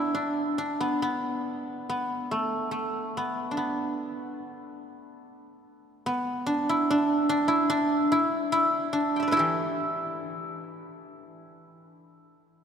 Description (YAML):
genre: chinese traditional, Chinese solo plucked strings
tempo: 71 BPM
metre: 4/4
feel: rubato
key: E yu mode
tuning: A4 = 440 Hz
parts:
  - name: guzheng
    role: solo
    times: 0.0-12.0 s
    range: E3 to G5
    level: -25 LUFS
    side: equal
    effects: none
room: wet cathedral reverb, RT60 4.9 s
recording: recorded in a church or concert hall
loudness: -25 LUFS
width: side -7 dB against mid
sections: 0.0-12.6 A section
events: none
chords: none